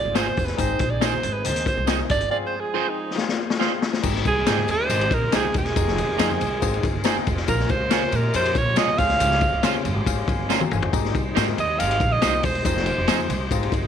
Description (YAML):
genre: uptempo 1960s-style soul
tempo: 139 BPM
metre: 4/4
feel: straight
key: Ab major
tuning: A4 = 440 Hz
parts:
  - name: clear alto saxophone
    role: melody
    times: 0.0-13.5 s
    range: Eb4 to F5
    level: -24 LUFS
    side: right 3 dB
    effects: none
  - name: overdriven tonewheel organ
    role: sustained chords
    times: 0.0-13.9 s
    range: Eb3 to C5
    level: -34 LUFS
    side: right 1 dB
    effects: chorus vibrato, slow rotary speaker
  - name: barky tine electric piano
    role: accompaniment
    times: 0.1-13.7 s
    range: Ab2 to Bb5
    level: -31 LUFS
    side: left 12 dB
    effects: overdrive, phaser
  - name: electric guitar at the edge of break-up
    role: stabs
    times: 0.1-13.2 s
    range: Db4 to Db5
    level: -28 LUFS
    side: right 14 dB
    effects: warbly pitch drift
  - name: upright bass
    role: bass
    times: 0.1-13.9 s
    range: Fb1 to Db3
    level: -27 LUFS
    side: right 1 dB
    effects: none
  - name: congas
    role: percussion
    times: 0.1-13.9 s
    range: none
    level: -38 LUFS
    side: right 7 dB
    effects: none
  - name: crunchy breakbeat drum kit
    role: drums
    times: 0.2-13.8 s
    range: crash cymbal, hi-hat, kick drum, ride cymbal, snare drum, toms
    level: -24 LUFS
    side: left 4 dB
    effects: none
  - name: tambourine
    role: percussion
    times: 0.2-13.8 s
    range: none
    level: -38 LUFS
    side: left 14 dB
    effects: none
room: light reverb, studio reverb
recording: 1960s-style stereo with parts hard left and right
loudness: -19 LUFS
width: side -8 dB against mid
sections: 0.0-4.0 A section; 4.0-13.9 B section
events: alto saxophone solo 0.0-4.0; drum fill 3.2-4.0, 10.5-10.9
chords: 0.0 Fm; 0.6 Ab; 2.3 Fm; 4.0 Abmaj7; 5.8 Fm7; 7.5 Bbm7; 9.0 Dbmaj7; 10.9 Abmaj7; 12.7 Fm7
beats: 0.16 | 0.59 1.02 1.45 1.88 | 2.31 2.75 3.18 3.61 | 4.04 4.47 4.90 5.33 | 5.76 6.19 6.62 7.05 | 7.49 7.92 8.35 8.78 | 9.21 9.64 10.07 10.50 | 10.93 11.36 11.79 12.22 | 12.65 13.08 13.51